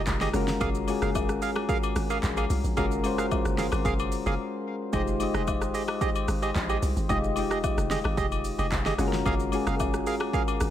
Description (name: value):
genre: amapiano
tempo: 111 BPM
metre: 4/4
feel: straight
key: unclear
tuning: A4 = 440 Hz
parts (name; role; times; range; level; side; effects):
- soft electric-piano-like synth keys; accompaniment; 0.0-10.7 s; Ab3 to Eb5; -29 LUFS; left 2 dB; chorus
- percussive organ stab; stabs; 0.0-10.4 s; G4 to F5; -33 LUFS; right 5 dB; chorus, ping-pong delay
- hollow log drum bass; bass; 0.0-10.7 s; F1 to C2; -30 LUFS; equal; none
- deep house drum kit; drums; 0.1-10.7 s; handclaps, hi-hat, kick drum, rim click, shaker, snare drum; -30 LUFS; equal; overdrive
- agogo bells and woodblock; percussion; 0.2-10.6 s; none; -36 LUFS; left 9 dB; none
room: light reverb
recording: none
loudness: -24 LUFS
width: side -11 dB against mid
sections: 0.0-10.7 A section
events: break 4.4-4.9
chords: 0.3 Gbmaj9; 4.9 Fm9; 9.0 Gbmaj9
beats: 0.07 | 0.61 1.15 1.69 2.23 | 2.77 3.31 3.85 4.39 | 4.93 5.47 6.01 6.55 | 7.09 7.64 8.18 8.72 | 9.26 9.80 10.34